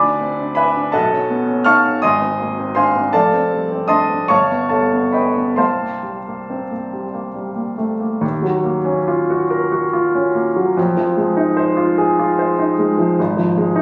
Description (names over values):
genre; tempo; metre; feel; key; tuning
classical, impressionist solo piano; 44-56 BPM (dotted quarters); 6/8; rubato; C dorian, Eb dorian from 8.2 s; A4 = 440 Hz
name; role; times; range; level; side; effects
clear baby grand piano; solo; 0.0-13.8 s; F1 to F6; -17 LUFS; equal; none
room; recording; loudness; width
light reverb; recorded on a phone in the room, studio reverb, compression; -17 LUFS; mono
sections
0.0-8.2 A section; 8.2-13.8 B section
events
none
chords
0.0 Dsus2; 0.9 B9; 2.0 Abadd9; 3.1 F9; 4.3 Gaug7; 5.6 C5; 8.2 Ebm9; 10.8 Fm7; 13.2 Ab5